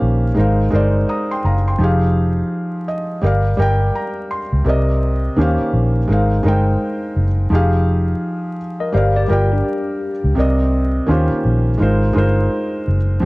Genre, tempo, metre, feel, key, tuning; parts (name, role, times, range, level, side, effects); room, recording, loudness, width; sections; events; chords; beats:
lo-fi hip hop; 84 BPM; 4/4; swing 62% on 16ths; A4 = 440 Hz
felt-muted upright piano; accompaniment; 0.0-13.3 s; C3 to Eb6; -18 LUFS; equal; cassette tape
vintage muted fingered electric bass; bass; 0.0-13.3 s; F1 to Eb2; -16 LUFS; equal
mellow tine electric piano; second line; 8.8-10.3 s; D4 to F5; -23 LUFS; left 3 dB; medium stereo tremolo, tape echo
moderate studio reverb, RT60 0.6 s; vinyl crackle; -15 LUFS; side -22 dB against mid
0.0-13.3 A section
felt piano fill 2.5-4.7
0.4 Ab69; 1.8 Fm9; 3.2 Gm7; 4.7 Cm9; 5.4 Eb13; 6.1 Ab69; 7.5 Fm9; 8.9 Gm7; 10.4 Cm9; 11.1 Eb13; 11.8 Ab69
0.37 1.08 | 1.79 2.51 3.22 3.94 | 4.65 5.37 6.08 6.79 | 7.51 8.22 8.94 9.65 | 10.37 11.08 11.79 12.51 | 13.22